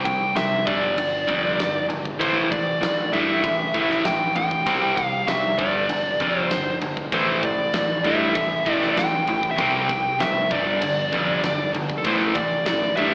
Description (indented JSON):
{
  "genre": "hard rock",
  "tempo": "98 BPM",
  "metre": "4/4",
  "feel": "straight",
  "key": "A minor",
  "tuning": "A4 = 440 Hz",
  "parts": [
    { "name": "dark smooth lead guitar", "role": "melody", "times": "0.0-13.1 s", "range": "A4 to G5", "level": "-26 LUFS", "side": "equal", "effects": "overdrive, slapback echo" },
    { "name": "overdriven semi-hollow guitar", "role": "riff", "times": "0.0-13.1 s", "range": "G2 to C4", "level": "-27 LUFS", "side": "equal", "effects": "slapback echo" },
    { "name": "growling picked electric bass", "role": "bass", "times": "0.0-13.1 s", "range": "G1 to G2", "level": "-33 LUFS", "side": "equal", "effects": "overdrive" },
    { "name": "huge arena drum kit", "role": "drums", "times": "0.1-13.1 s", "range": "kick drum, ride cymbal, snare drum", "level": "-31 LUFS", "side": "equal", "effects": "none" },
    { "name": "sludgy distorted guitar", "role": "riff", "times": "7.1-13.1 s", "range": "G2 to C4", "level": "-33 LUFS", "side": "equal", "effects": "none" }
  ],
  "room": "light reverb",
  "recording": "live gig heard through the venue's PA, recital hall reverb, AM radio sound",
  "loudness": "-22 LUFS",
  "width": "mono",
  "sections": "0.0-13.1 A section",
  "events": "none",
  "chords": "0.0 C5; 0.7 G5; 2.2 A5; 4.7 C5; 5.6 G5; 7.1 A5; 9.6 C5; 10.5 G5; 12.0 A5"
}